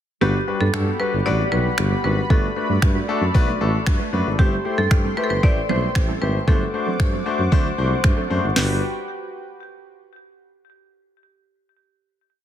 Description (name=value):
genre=dance-pop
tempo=115 BPM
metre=4/4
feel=straight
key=G major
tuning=A4 = 437 Hz
part: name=marimba with hard mallets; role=melody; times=0.2-8.8 s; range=G4 to D5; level=-27 LUFS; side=equal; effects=tape echo
part: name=clear grand piano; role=accompaniment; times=0.2-8.8 s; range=G3 to C5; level=-25 LUFS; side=left 6 dB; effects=sidechain pumping
part: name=warm analog pad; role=sustained chords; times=0.2-8.8 s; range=F#4 to D6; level=-30 LUFS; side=right 1 dB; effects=chorus, sidechain pumping
part: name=mellow electric guitar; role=riff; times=0.2-8.7 s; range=F#3 to B4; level=-29 LUFS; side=right 6 dB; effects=ensemble chorus
part: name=mellow tuba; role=bass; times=0.2-8.8 s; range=G1 to G2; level=-22 LUFS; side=equal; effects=sidechain pumping
part: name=smooth R&B drum kit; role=drums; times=0.7-8.7 s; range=finger snaps, hi-hat, kick drum, snare drum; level=-19 LUFS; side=equal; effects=overdrive, soft clipping on snare
room=light reverb, small room ambience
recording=dense, heavily limited modern master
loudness=-18 LUFS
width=side -10 dB against mid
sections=0.2-8.6 verse; 8.6-10.7 final chord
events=none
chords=0.2 Gmaj7; 4.4 Am7/G; 6.5 D7/G; 8.6 Gmaj7